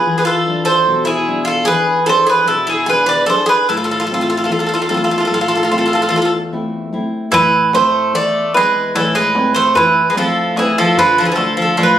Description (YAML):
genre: greek folk, Greek bouzouki band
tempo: 148 BPM (eighths)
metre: 9/8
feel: straight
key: A harmonic minor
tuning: A4 = 440 Hz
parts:
  - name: Greek bouzouki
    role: melody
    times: 0.0-12.0 s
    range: G#4 to D5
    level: -14 LUFS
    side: right 2 dB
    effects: plate reverb
  - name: Greek bouzouki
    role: second line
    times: 0.0-12.0 s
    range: E3 to B4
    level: -17 LUFS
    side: equal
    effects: none
  - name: nylon-string guitar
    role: accompaniment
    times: 0.1-12.0 s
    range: E2 to G#4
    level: -22 LUFS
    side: left 2 dB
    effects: none
  - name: darbuka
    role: percussion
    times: 7.3-12.0 s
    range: none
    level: -28 LUFS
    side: left 2 dB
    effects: none
room: moderate small room reverb, RT60 0.6 s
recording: recorded on a phone in the room, studio reverb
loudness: -12 LUFS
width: side -10 dB against mid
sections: 0.0-7.3 A section; 7.3-12.0 B section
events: none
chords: 0.1 E7; 3.7 Am; 11.0 Dm